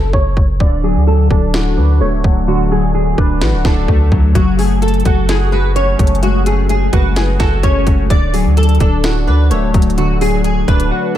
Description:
hip hop, trap; 128 BPM; 4/4; half-time; A4 = 440 Hz
flamenco guitar; melody; 0.0-11.2 s; F#4 to D5; -20 LUFS; right 1 dB; analog chorus, low-pass filter, ping-pong delay
long sustained 808-style bass; bass; 0.0-10.9 s; D1 to D2; -14 LUFS; equal
trap drum kit; drums; 0.1-10.9 s; hi-hat, kick drum, snare drum; -15 LUFS; equal
warbly lo-fi synth keys; accompaniment; 0.6-11.2 s; D3 to G#4; -17 LUFS; left 3 dB; chorus, phaser, low-pass filter
light reverb, digital ambience; -11 LUFS; side -12 dB against mid
0.0-11.2 A section
break 0.0-4.4, 10.9; filter sweep 0.0-4.4
0.0 F#5; 0.6 D; 4.4 F#madd9; 8.1 D

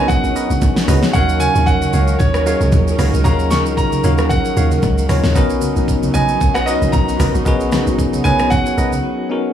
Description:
amapiano; 114 BPM; 4/4; swing 55% on 16ths; A4 = 440 Hz
bright concert grand piano; melody; 0.0-9.3 s; Db5 to Db6; -21 LUFS; right 2 dB; tape echo
bell-like tine electric piano; accompaniment; 0.0-9.5 s; F3 to Db5; -20 LUFS; left 4 dB; fast stereo tremolo
dark studio string section; sustained chords; 0.0-9.5 s; Eb3 to Bb4; -24 LUFS; right 4 dB; sidechain pumping
percussive organ stab; stabs; 0.0-8.9 s; Gb4 to F5; -27 LUFS; right 3 dB; chorus, tape echo
deep log drum bass; bass; 0.0-9.0 s; A#1 to Eb2; -18 LUFS; equal
smooth R&B drum kit; drums; 0.1-9.0 s; hi-hat, kick drum, rim click, shaker, snare drum; -19 LUFS; equal
congas; percussion; 0.1-9.0 s; -23 LUFS; right 3 dB
little or no reverb; small room ambience; -13 LUFS; side -10 dB against mid
0.0-9.5 A section
break 9.0-9.5
0.0 Bmaj7; 1.1 Ebm9; 5.4 Bmaj7

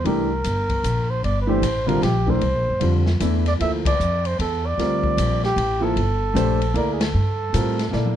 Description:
modal jazz; 152 BPM; 3/4; swing 64% on 8ths; C mixolydian; A4 = 440 Hz
trumpet with bucket mute; melody; 0.0-8.2 s; G4 to E5; -24 LUFS; right 2 dB
warm baby grand piano; accompaniment; 0.0-8.2 s; D3 to D5; -24 LUFS; equal
upright bass; bass; 0.0-8.2 s; G1 to Bb2; -22 LUFS; equal
open jazz drum kit; drums; 0.1-8.2 s; hi-hat, kick drum, ride cymbal, snare drum, toms; -29 LUFS; left 2 dB
light reverb; dark, warm production; -18 LUFS; side -10 dB against mid
0.0-8.2 A section
band accent 3.8, 6.9; drum fill 7.9
0.0 C13

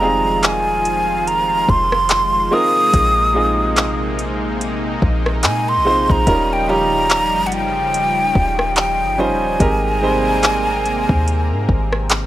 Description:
contemporary R&B; 72 BPM; 4/4; swing 58% on 16ths; A4 = 440 Hz
breathy hollow jazz flute; melody; 0.0-12.1 s; Gb5 to Eb6; -17 LUFS; right 1 dB
clear baby grand piano; accompaniment; 0.0-12.3 s; G3 to C5; -22 LUFS; right 1 dB
lush unison pad; sustained chords; 0.0-12.3 s; C3 to Bb4; -24 LUFS; left 1 dB; chorus
soft 808-style bass; bass; 0.0-12.3 s; Eb1 to Bb2; -23 LUFS; equal
smooth R&B drum kit; drums; 0.4-12.3 s; handclaps, hi-hat, kick drum, rim click; -17 LUFS; equal; overdrive
digital ambience; -14 LUFS; side -14 dB against mid
0.0-12.3 A section
0.0 Fm9; 2.5 Bb9sus4; 6.3 Eb9; 9.6 Abmaj9

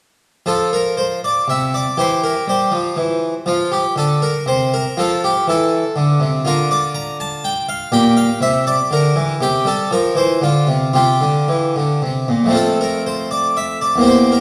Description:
classical, baroque-style suite movement for harpsichord; 120 BPM; 3/4; rubato; F major; A4 = 440 Hz
harpsichord; solo; 0.5-14.4 s; E2 to Bb5; -17 LUFS; equal
wet recital hall reverb, RT60 1.3 s; -17 LUFS; mono
0.5-12.5 A section; 12.5-14.4 A section
0.5 F5; 2.0 C/E; 3.5 F5; 5.0 F; 6.5 Dmadd11; 7.9 Gm/Bb; 9.4 C; 10.4 Dm; 10.9 Csus4; 12.0 C5; 12.5 F

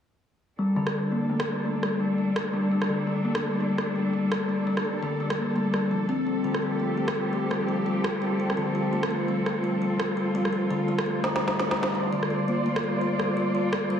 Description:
half-time drum and bass; 169 BPM; 4/4; swing 56% on 16ths, half-time; A4 = 440 Hz
muted symphonic cello section; sustained chords; 0.6-14.0 s; F3 to D5; -30 LUFS; equal
kalimba; arpeggios; 0.6-14.0 s; D3 to C4; -27 LUFS; left 2 dB; low-pass filter, digital delay
electronic rim click and snare drum; drums; 0.9-13.8 s; -30 LUFS; right 1 dB
moderate lush hall reverb, RT60 1.5 s, studio reverb; heavily compressed radio sound, small room ambience; -24 LUFS; side -8 dB against mid
0.6-14.0 A section
drum fill 11.2-11.9
0.6 G5; 6.3 F; 11.9 Bb (rootless)

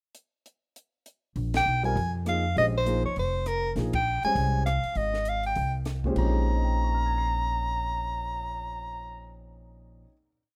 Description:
modal jazz; 200 BPM; 4/4; swing 60% on 8ths; Bb dorian; A4 = 440 Hz
compact cocktail drum kit; drums; 0.1-8.5 s; crash cymbal, cymbal swell, hi-hat, kick drum, ride cymbal, rim click, snare drum; -39 LUFS; equal
upright bass; bass; 1.4-10.0 s; F1 to F2; -31 LUFS; equal
breathy soprano saxophone; melody; 1.6-9.3 s; Bb4 to Bb5; -30 LUFS; equal
dark grand piano; accompaniment; 1.8-10.4 s; Bb2 to C7; -36 LUFS; equal
light reverb, studio reverb; rough home demo mix; -27 LUFS; mono
0.2-1.4 pickup bar; 1.4-6.2 A section; 6.2-8.6 final chord
band accent 1.5, 3.9
0.2 N.C.; 1.4 Bb9sus4; 3.8 Fmadd9/Bb; 6.2 Bbm11

